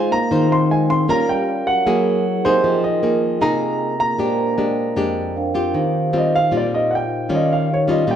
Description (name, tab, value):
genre	bossa nova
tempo	155 BPM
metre	4/4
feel	straight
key	Eb major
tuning	A4 = 440 Hz
part	warm concert grand piano	melody	0.0-8.2 s	C5 to C6	-20 LUFS	right 1 dB	none
part	mellow trombone	second line	0.0-5.3 s	C3 to C4	-26 LUFS	right 2 dB	none
part	nylon-string guitar	accompaniment	0.0-8.2 s	F2 to C5	-19 LUFS	left 1 dB	none
part	vibraphone with soft mallets	accompaniment	0.0-8.2 s	Db4 to G5	-24 LUFS	right 3 dB	none
room	wet large studio reverb, RT60 1.1 s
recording	heard from further back in the room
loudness	-16 LUFS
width	side -9 dB against mid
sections	0.0-5.7 A section; 5.7-8.2 B section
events	vibraphone fill 5.2-5.7; grand piano solo 5.7-8.2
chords	0.0 Ab6; 1.1 Gm7b5; 1.9 Gb9; 2.6 Fm11; 4.2 Bb13; 5.7 Eb69; 7.3 Eb9